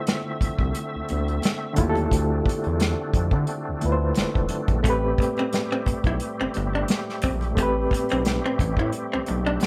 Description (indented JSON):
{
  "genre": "R&B, neo-soul",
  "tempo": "88 BPM",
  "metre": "4/4",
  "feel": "swing 54% on 16ths",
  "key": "A minor",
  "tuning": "A4 = 439 Hz",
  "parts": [
    { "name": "barky reed electric piano", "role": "accompaniment", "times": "0.0-9.7 s", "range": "A2 to C5", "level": "-30 LUFS", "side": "equal", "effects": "overdrive, fast tremolo" },
    { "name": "bright tonewheel organ", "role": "sustained chords", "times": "0.0-9.7 s", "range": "D3 to E5", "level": "-34 LUFS", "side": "equal", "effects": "fast rotary speaker, overdrive, chorus vibrato" },
    { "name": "unplugged drum kit", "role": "drums", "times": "0.1-9.7 s", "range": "hi-hat, kick drum, snare drum", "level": "-26 LUFS", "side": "equal", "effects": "none" },
    { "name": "congas", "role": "percussion", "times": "0.1-9.7 s", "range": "none", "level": "-41 LUFS", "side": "equal", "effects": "none" },
    { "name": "smooth gliding synth bass", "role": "bass", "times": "0.4-9.7 s", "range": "E1 to D3", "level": "-29 LUFS", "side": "equal", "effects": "none" },
    { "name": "archtop guitar, miked and amplified", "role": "second line", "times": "4.8-9.6 s", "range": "A3 to E4", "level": "-30 LUFS", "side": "equal", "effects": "none" }
  ],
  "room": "light reverb",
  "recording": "none",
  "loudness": "-24 LUFS",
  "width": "mono",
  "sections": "0.0-9.7 A section",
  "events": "none",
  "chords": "0.0 Dm9; 4.8 Am9"
}